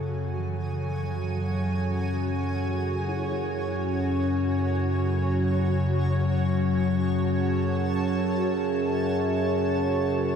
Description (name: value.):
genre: dark ambient drone.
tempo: free time.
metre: none.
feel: none.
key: F# minor.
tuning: A4 = 439 Hz.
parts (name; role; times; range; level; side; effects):
granular cloud pad; sustained chords; 0.0-10.4 s; F#4 to A5; -31 LUFS; right 2 dB; built-in reverb, shimmer reverb.
overtone-sweeping drone; drone; 0.0-10.4 s; F#2 to C#3; -24 LUFS; equal; chorus, built-in reverb.
bronze singing bowl; texture; 0.0-10.4 s; A4; -44 LUFS; right 2 dB; none.
gamelan-type bronze metallophone; arpeggios; 0.4-9.8 s; E3 to E4; -44 LUFS; equal; none.
room: wet huge ambient reverb, RT60 7.6 s.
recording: dreamy mix soaked in reverb.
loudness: -24 LUFS.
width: side -7 dB against mid.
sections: 0.0-10.4 A section.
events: none.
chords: 0.0 F#m.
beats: free time.